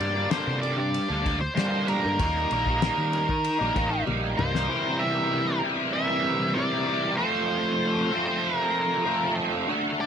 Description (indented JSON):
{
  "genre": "psychedelic rock",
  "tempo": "96 BPM",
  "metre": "4/4",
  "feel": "straight",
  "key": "unclear",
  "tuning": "A4 = 440 Hz",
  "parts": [
    { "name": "octave-fuzz lead guitar", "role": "melody", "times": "0.0-10.1 s", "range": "Bb4 to E5", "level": "-28 LUFS", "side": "equal", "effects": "distortion, tape echo" },
    { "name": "overdriven electric guitar", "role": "riff", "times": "0.0-10.1 s", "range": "G2 to Bb4", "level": "-25 LUFS", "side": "equal", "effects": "rotary speaker" },
    { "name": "fingered electric bass", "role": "bass", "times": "0.0-4.7 s", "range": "A1 to G3", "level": "-30 LUFS", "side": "equal", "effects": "none" },
    { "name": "damped 70s drum kit", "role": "drums", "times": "0.0-4.7 s", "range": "kick drum, ride cymbal, snare drum, toms", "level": "-32 LUFS", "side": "left 3 dB", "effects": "none" }
  ],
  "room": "small room ambience",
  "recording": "1960s-style stereo",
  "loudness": "-23 LUFS",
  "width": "side -8 dB against mid",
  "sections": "0.0-4.7 A section; 4.7-10.1 B section",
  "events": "drum fill 4.1-4.7",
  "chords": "0.0 Gm; 2.2 Eb; 4.7 C7; 7.2 F",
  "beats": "0.31 0.94 1.56 | 2.19 2.82 3.44 4.07 | 4.70 5.32 5.95 6.58 | 7.20 7.83 8.45 9.08 | 9.70"
}